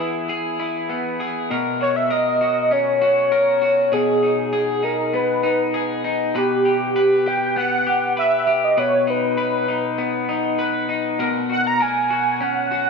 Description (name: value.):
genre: dream pop.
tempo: 99 BPM.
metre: 4/4.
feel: straight.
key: B major.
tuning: A4 = 441 Hz.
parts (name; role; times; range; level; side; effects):
warm velvety synth lead; melody; 0.0-12.9 s; G4 to A#5; -18 LUFS; equal; chorus, ping-pong delay.
electric guitar through a small old amp; arpeggios; 0.0-12.9 s; B2 to B4; -22 LUFS; left 2 dB; lush chorus, ping-pong delay.
room: moderate recital hall reverb, RT60 1.5 s, digital ambience.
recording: none.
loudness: -17 LUFS.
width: side -5 dB against mid.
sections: 0.0-1.5 A section; 1.5-12.9 B section.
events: none.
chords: 0.0 E; 1.5 F#/B; 3.9 G#m/B; 6.3 B(#5, no3); 8.8 B; 11.2 F#add9/B.